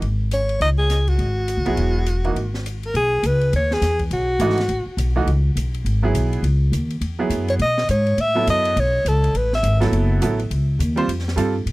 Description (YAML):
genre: modal jazz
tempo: 206 BPM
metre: 4/4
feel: swing 61% on 8ths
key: F# dorian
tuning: A4 = 438 Hz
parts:
  - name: upright bass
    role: bass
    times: 0.0-11.7 s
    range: Fb1 to B2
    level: -20 LUFS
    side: equal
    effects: none
  - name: open jazz drum kit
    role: drums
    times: 0.0-11.7 s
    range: hi-hat, kick drum, ride cymbal, snare drum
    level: -34 LUFS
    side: left 1 dB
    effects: none
  - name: bright alto saxophone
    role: melody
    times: 0.3-5.0, 7.5-9.8 s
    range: Gb4 to E5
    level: -21 LUFS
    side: equal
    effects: tape echo
  - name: bright upright piano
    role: accompaniment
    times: 1.7-2.4, 4.4-11.5 s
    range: Fb3 to B#4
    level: -23 LUFS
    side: right 4 dB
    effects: none
room: little or no reverb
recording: dry, close 1970s-style studio recording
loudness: -17 LUFS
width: side -20 dB against mid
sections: 0.0-2.9 A section; 2.9-11.7 B section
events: none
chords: 0.0 Dbm11; 2.9 F#9sus4; 7.6 B9sus4; 11.1 F